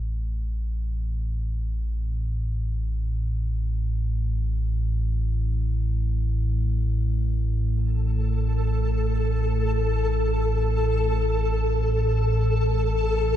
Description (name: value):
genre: dark ambient drone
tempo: free time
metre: none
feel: none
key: unclear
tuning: A4 = 440 Hz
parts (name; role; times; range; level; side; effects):
- deep rumbling drone; drone; 0.0-13.4 s; A1 to A2; -23 LUFS; equal; built-in reverb
- flickering grainy texture; texture; 8.2-13.4 s; A4; -26 LUFS; left 1 dB; built-in reverb
room: moderate cathedral reverb, RT60 5.6 s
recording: none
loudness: -22 LUFS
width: side -11 dB against mid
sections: 0.0-13.4 A section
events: none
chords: none